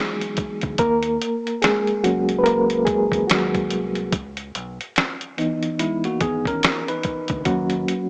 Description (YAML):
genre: lo-fi hip hop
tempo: 72 BPM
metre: 4/4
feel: swing 61% on 16ths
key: Eb phrygian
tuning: A4 = 440 Hz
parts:
  - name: reed electric piano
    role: accompaniment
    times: 0.0-8.1 s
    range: Fb3 to Cb5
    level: -20 LUFS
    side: equal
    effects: fast tremolo, low-pass filter
  - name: lo-fi sampler-style drum kit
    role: drums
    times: 0.2-8.1 s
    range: hi-hat, kick drum, snare drum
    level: -22 LUFS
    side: equal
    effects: none
  - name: deep dub fingered electric bass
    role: bass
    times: 0.6-7.8 s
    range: Ab1 to Fb2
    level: -33 LUFS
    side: equal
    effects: none
  - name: bell-like tine electric piano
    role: second line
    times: 5.8-7.4 s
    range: Ab3 to Cb5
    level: -25 LUFS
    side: equal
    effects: slow stereo tremolo, low-pass filter, analog delay
room: light reverb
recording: cassette tape, small speaker sound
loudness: -19 LUFS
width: side -39 dB against mid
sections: 0.0-8.1 A section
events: reed electric piano solo 0.0-8.1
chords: 0.0 Dbm7 (rootless); 0.8 Ebm7; 4.1 Dbm7 (rootless); 7.5 Ebm7